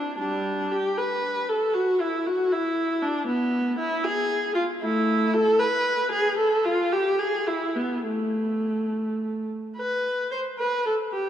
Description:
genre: classical, baroque-style suite movement for unaccompanied viola.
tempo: 68-79 BPM (dotted quarters).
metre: 6/8.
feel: rubato.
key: E minor.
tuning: A4 = 438 Hz.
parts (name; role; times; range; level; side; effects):
rich viola; solo; 0.0-11.3 s; G3 to C5; -23 LUFS; equal; none.
room: wet church reverb, RT60 3.8 s.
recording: dark, warm production.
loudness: -22 LUFS.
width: side -10 dB against mid.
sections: 0.0-9.8 A section; 9.8-11.3 A section.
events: none.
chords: none.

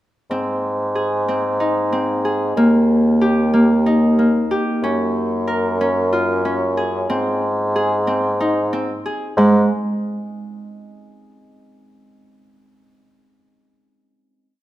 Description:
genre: contemporary instrumental, chamber music in an uneven meter.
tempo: 185 BPM (eighths).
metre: 7/8.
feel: straight.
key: Ab major.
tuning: A4 = 440 Hz.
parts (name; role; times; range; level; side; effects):
Celtic harp; arpeggios; 0.3-9.7 s; Ab3 to Bb4; -18 LUFS; equal; none.
mellow bassoon; bass; 0.3-9.7 s; Eb2 to Ab2; -20 LUFS; equal; none.
room: moderate recital hall reverb, RT60 1.7 s.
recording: none.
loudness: -16 LUFS.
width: side -14 dB against mid.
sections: 0.3-9.4 climax; 9.4-11.7 final note.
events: none.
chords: 0.3 Ab; 2.6 Eb; 4.8 Gbmaj7; 7.1 Ab; 9.4 N.C..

